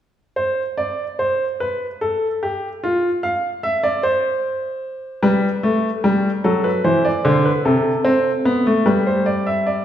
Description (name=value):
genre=classical, baroque-style two-part invention for grand piano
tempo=50 BPM (dotted quarters)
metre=6/8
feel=straight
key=unclear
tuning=A4 = 441 Hz
part: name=warm baby grand piano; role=solo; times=0.4-9.8 s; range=C3 to F5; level=-17 LUFS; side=equal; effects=none
room=wet recital hall reverb, RT60 1.6 s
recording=heard from further back in the room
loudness=-17 LUFS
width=side -10 dB against mid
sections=0.4-9.8 A section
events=none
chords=0.4 N.C.; 5.2 G; 6.4 D; 7.7 Amadd9/C; 8.9 G